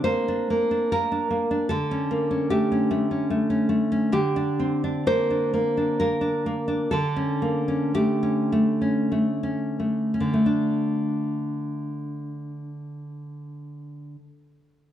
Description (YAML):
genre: romantic piece for solo classical guitar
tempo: 42-75 BPM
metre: 3/4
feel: rubato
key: unclear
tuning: A4 = 439 Hz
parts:
  - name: nylon-string guitar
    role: solo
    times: 0.0-14.4 s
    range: D3 to C5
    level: -22 LUFS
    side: equal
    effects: none
room: moderate recital hall reverb, RT60 1.6 s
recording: dark, warm production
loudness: -22 LUFS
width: side -10 dB against mid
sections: 0.0-10.5 A section; 10.5-14.3 B section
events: slowing down 2.9-10.5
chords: 0.0 Gm (rootless); 1.7 A7/D; 4.1 Gm/D; 6.9 A7/D; 10.5 D5